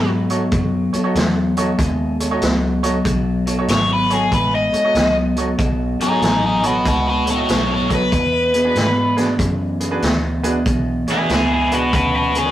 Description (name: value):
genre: electric blues shuffle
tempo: 95 BPM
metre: 4/4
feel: swing 66% on 8ths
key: B mixolydian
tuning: A4 = 440 Hz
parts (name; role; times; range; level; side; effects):
- cranked stack guitar; melody; 0.0-12.5 s; D#4 to D#5; -18 LUFS; left 1 dB; overdrive, phaser
- electric guitar through a small old amp; riff; 0.0-12.5 s; E2 to G#3; -20 LUFS; equal; none
- vintage muted fingered electric bass; bass; 0.0-12.5 s; G#1 to G#2; -24 LUFS; equal; none
- bright grand piano; accompaniment; 0.3-12.5 s; D4 to D#5; -26 LUFS; right 4 dB; none
- vintage drum kit; drums; 0.3-12.4 s; hi-hat, kick drum, snare drum; -22 LUFS; equal; none
room: moderate stone room reverb, RT60 1.3 s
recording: rough rehearsal-room recording, warm saturation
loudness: -15 LUFS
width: side -13 dB against mid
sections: 0.0-12.5 A section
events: overdriven electric guitar solo 0.0-12.5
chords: 0.0 B9; 8.1 E9